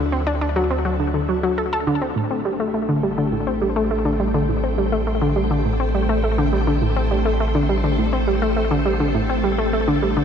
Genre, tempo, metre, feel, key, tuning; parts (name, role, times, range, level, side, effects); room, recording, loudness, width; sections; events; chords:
ambient, sequencer-driven space music; 103 BPM; 4/4; straight; A dorian; A4 = 438 Hz
string machine, full ensemble; sustained chords; 0.0-10.2 s; A3 to G5; -25 LUFS; equal; ensemble chorus
analog pluck; riff; 0.0-10.2 s; A2 to A4; -20 LUFS; equal; chorus, ping-pong delay
warm sub bass; bass; 0.0-10.2 s; A1 to D2; -24 LUFS; right 1 dB
moderate huge ambient reverb, RT60 8.4 s; dark, warm production; -18 LUFS; side -7 dB against mid
0.0-10.2 A section
0.0 Dadd9; 2.2 Am7